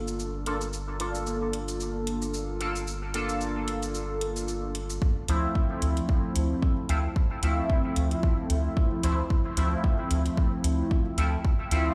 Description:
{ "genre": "dub techno", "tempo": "112 BPM", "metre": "4/4", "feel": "swing 56% on 16ths", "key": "D minor", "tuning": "A4 = 441 Hz", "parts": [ { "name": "resonant sweep polysynth", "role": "stabs", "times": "0.0-11.9 s", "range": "F3 to A4", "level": "-32 LUFS", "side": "equal", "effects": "chorus, phaser, sidechain pumping, dub echo" }, { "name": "round analog bass", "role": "bass", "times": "0.0-11.9 s", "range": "G1 to D2", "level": "-32 LUFS", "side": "equal", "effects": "sidechain pumping" }, { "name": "electronic shaker and hi-hat", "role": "drums", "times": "0.1-11.8 s", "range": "none", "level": "-40 LUFS", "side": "equal", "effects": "overdrive, studio reverb" }, { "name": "electronic kick drum", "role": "drums", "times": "5.0-11.6 s", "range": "none", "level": "-27 LUFS", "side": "equal", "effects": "overdrive, studio reverb" } ], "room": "light reverb, digital ambience", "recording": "played on a big sound system in a bare room, stone room reverb", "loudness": "-28 LUFS", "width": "mono", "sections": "0.0-5.0 A section; 5.0-11.9 B section", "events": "none", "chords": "0.0 Gm7; 5.0 Dm7" }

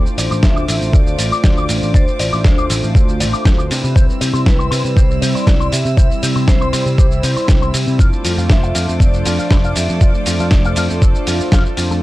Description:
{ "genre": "nu-disco, nu disco", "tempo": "119 BPM", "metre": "4/4", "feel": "straight", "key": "unclear", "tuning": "A4 = 440 Hz", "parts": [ { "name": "warm analog pad", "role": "accompaniment", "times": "0.0-12.0 s", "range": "F3 to C5", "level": "-22 LUFS", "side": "right 1 dB", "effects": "chorus" }, { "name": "warm chamber violin section", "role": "sustained chords", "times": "0.0-12.0 s", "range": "C4 to E6", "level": "-30 LUFS", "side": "equal", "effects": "sidechain pumping" }, { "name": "electric guitar with an envelope filter", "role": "riff", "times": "0.0-11.9 s", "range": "C4 to D6", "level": "-25 LUFS", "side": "left 4 dB", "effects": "analog chorus" }, { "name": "picked electric bass", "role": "bass", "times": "0.0-12.0 s", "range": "F1 to C3", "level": "-19 LUFS", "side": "equal", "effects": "sidechain pumping" }, { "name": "dusty soul sampler-style drum kit", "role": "drums", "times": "0.1-12.0 s", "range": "hi-hat, shaker, snare drum", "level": "-21 LUFS", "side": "equal", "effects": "overdrive" }, { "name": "vibraphone with medium hard mallets", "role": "melody", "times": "0.4-11.5 s", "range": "B4 to E5", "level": "-25 LUFS", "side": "equal", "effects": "tape echo" }, { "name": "electronic kick drum", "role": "drums", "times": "0.4-11.6 s", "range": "none", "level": "-12 LUFS", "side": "equal", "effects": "overdrive" } ], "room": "digital ambience", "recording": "dry, gritty hardware recording", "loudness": "-12 LUFS", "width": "side -17 dB against mid", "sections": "0.0-12.0 A section", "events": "none", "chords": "0.0 Dm7; 3.7 Cmaj7; 8.0 F6" }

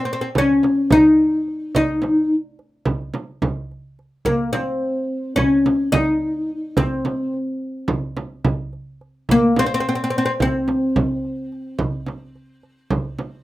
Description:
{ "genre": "Turkish makam ensemble", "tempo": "215 BPM (eighths)", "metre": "9/8", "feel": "straight", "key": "C makam kurdi", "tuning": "A4 = 441 Hz", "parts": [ { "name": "oud", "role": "melody", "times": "0.0-13.4 s", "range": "Bb3 to Eb4", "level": "-18 LUFS", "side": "left 1 dB", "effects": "none" }, { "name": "darbuka", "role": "percussion", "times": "0.4-13.3 s", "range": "none", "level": "-28 LUFS", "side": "right 2 dB", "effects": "none" }, { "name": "frame drum", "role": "percussion", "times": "0.4-13.3 s", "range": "none", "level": "-23 LUFS", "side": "right 2 dB", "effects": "none" } ], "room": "moderate studio ambience, RT60 0.5 s", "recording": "rough home demo mix", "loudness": "-18 LUFS", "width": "side -16 dB against mid", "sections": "0.0-13.4 A section", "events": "none", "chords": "none" }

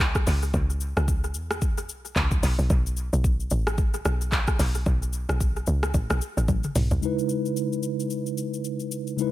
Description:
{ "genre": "amapiano", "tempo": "111 BPM", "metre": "4/4", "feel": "swing 58% on 16ths", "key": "C# minor", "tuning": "A4 = 441 Hz", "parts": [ { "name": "woody log drum bass", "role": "bass", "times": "0.0-7.0 s", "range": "A1 to E2", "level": "-25 LUFS", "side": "equal", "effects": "none" }, { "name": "afro-pop drum kit", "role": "drums", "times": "0.0-9.3 s", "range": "handclaps, hi-hat, kick drum, rim click, shaker, toms", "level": "-26 LUFS", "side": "equal", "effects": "analog delay" }, { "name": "mellow tine electric piano", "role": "accompaniment", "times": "7.0-9.3 s", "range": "C#3 to B4", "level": "-26 LUFS", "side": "equal", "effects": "medium stereo tremolo" } ], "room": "little or no reverb", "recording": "echo-heavy mix", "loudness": "-23 LUFS", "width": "side -14 dB against mid", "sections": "0.0-7.0 A section; 7.0-9.3 B section", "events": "drop 0.0-7.0; drum fill 6.5-7.0", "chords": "0.0 C#m; 2.4 N.C.; 7.0 C#m9" }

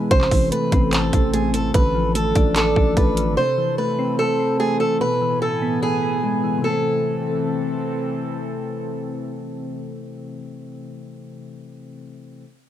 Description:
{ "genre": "hip hop, trap", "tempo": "147 BPM", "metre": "4/4", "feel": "half-time", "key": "A harmonic minor", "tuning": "A4 = 440 Hz", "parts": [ { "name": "fingerpicked acoustic archtop guitar", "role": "melody", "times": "0.0-7.8 s", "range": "G#4 to C5", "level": "-22 LUFS", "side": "right 1 dB", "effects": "none" }, { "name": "soft electric-piano-like synth keys", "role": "accompaniment", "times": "0.0-12.4 s", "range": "B2 to D5", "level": "-25 LUFS", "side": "left 2 dB", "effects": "chorus, tremolo" }, { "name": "warbly tape-like pad", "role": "sustained chords", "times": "0.0-10.7 s", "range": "A2 to G#5", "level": "-27 LUFS", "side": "right 1 dB", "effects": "chorus, built-in reverb" }, { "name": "growling 808-style bass", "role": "bass", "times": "0.1-3.4 s", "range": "G#1 to A1", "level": "-23 LUFS", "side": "equal", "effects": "none" }, { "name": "trap drum kit", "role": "drums", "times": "0.1-3.3 s", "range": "handclaps, hi-hat, kick drum", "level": "-19 LUFS", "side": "equal", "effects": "none" } ], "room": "light reverb", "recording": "dark, warm production", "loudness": "-18 LUFS", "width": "side -11 dB against mid", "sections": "0.1-6.6 A section; 6.6-9.9 B section", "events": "none", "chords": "0.1 Am; 1.7 Dm/A; 3.4 Am; 5.0 E/A; 6.6 Am" }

